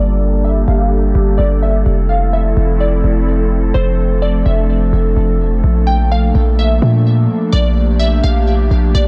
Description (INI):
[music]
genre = hip hop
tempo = 127 BPM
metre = 4/4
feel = half-time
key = unclear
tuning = A4 = 440 Hz
[part]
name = glassy wavetable pluck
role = melody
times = 0.0-9.1 s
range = C5 to G5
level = -24 LUFS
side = equal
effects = chorus, low-pass filter, delay
[part]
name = airy breathy pad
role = sustained chords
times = 0.0-9.1 s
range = F3 to A4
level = -20 LUFS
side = equal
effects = chorus, low-pass filter
[part]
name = warm 808-style bass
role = bass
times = 0.0-9.1 s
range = E1 to Bb2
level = -16 LUFS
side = equal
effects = none
[sound]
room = little or no reverb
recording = dense, heavily limited modern master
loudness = -14 LUFS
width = mono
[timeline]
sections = 0.0-9.1 A section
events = filter sweep 0.0-9.1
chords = 0.0 Gmadd9; 1.9 Fmaj7; 5.6 Bbmaj7